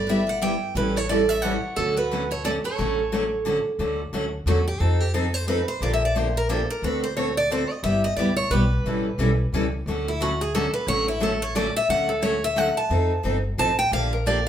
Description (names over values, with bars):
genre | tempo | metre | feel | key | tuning
acoustic string swing (jazz manouche) | 178 BPM | 3/4 | swing 60% on 8ths | D major | A4 = 438 Hz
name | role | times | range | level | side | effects
picked steel-string acoustic guitar | melody | 0.0-14.5 s | E4 to A5 | -25 LUFS | equal | none
picked steel-string acoustic guitar | second line | 0.0-3.6 s | F#4 to E5 | -28 LUFS | right 5 dB | none
upright bass | bass | 0.0-14.5 s | G1 to F2 | -27 LUFS | equal | none
picked steel-string acoustic guitar | accompaniment | 0.1-14.4 s | D3 to A4 | -26 LUFS | left 2 dB | none
picked steel-string acoustic guitar | accompaniment | 0.1-14.4 s | D3 to A4 | -32 LUFS | right 4 dB | none
room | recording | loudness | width
wet studio reverb, RT60 0.7 s | band playing live in one room | -21 LUFS | side -10 dB against mid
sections
0.0-3.8 A section; 3.8-11.9 B section; 11.9-14.5 B section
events
steel-string acoustic guitar solo 3.8-14.5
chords
0.0 G6; 0.8 A7; 1.8 Dmaj7; 4.8 F7; 5.8 Bb6; 6.8 D7; 7.8 G6; 8.8 A7; 9.9 Dmaj7; 12.9 F7; 13.9 Bb6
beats
0.08 0.42 | 0.76 1.10 1.43 | 1.77 2.11 2.44 | 2.78 3.12 3.46 | 3.79 4.13 4.47 | 4.80 5.14 5.48 | 5.82 6.15 6.49 | 6.83 7.16 7.50 | 7.84 8.18 8.51 | 8.85 9.19 9.53 | 9.86 10.20 10.54 | 10.88 11.21 11.55 | 11.89 12.23 12.57 | 12.90 13.24 13.58 | 13.92 14.26